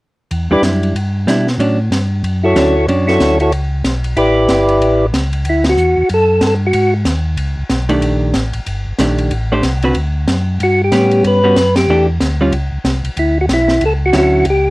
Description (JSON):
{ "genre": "soul jazz organ trio", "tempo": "187 BPM", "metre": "4/4", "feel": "swing 61% on 8ths", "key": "D major", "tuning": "A4 = 440 Hz", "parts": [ { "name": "mellow tonewheel organ", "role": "bass", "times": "0.3-14.7 s", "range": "G1 to B2", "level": "-16 LUFS", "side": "equal", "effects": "chorus vibrato, slow rotary speaker" }, { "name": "compact cocktail drum kit", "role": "drums", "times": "0.3-14.5 s", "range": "hi-hat, ride cymbal, snare drum", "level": "-21 LUFS", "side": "equal", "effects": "none" }, { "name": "percussive tonewheel organ", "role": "melody", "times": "0.5-6.9, 10.6-14.7 s", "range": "E4 to D5", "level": "-12 LUFS", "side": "equal", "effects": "slow rotary speaker, cassette tape" }, { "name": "vintage hollow-body jazz guitar", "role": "accompaniment", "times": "0.5-3.4, 7.9-14.5 s", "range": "D3 to C5", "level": "-15 LUFS", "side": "right 1 dB", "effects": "cassette tape" } ], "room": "light reverb", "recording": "home recording on cassette", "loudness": "-12 LUFS", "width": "side -20 dB against mid", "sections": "0.3-5.5 A section; 5.5-14.7 B section", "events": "band accent 5.6, 11.7", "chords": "0.3 Em9; 1.6 Dmaj7; 4.2 A7sus4; 5.5 Dadd9; 6.7 G#5; 7.4 C#sus2; 8.0 Ebmaj7#11; 9.3 Am11; 10.0 D; 10.6 Gmaj9#11; 11.9 Em7; 12.5 N.C.; 13.2 Dmaj9" }